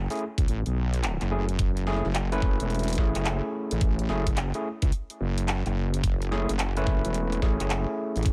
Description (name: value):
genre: glitch hop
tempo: 108 BPM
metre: 4/4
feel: swing 64% on 16ths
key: F# minor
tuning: A4 = 439 Hz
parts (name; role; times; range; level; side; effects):
- wobble bass; bass; 0.0-8.3 s; E1 to C#2; -30 LUFS; equal; chorus, overdrive
- overdriven tine electric piano; stabs; 0.1-8.3 s; A3 to B4; -33 LUFS; equal; vintage 12-bit sampler grit, sidechain pumping, tape echo
- drum and bass drum kit; drums; 0.1-8.3 s; handclaps, hi-hat, snare drum; -36 LUFS; equal; none
- electronic kick drum; drums; 0.4-8.3 s; none; -27 LUFS; equal; none
room: digital ambience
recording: none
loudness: -27 LUFS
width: mono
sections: 0.0-8.3 A section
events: none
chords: 0.0 F#m9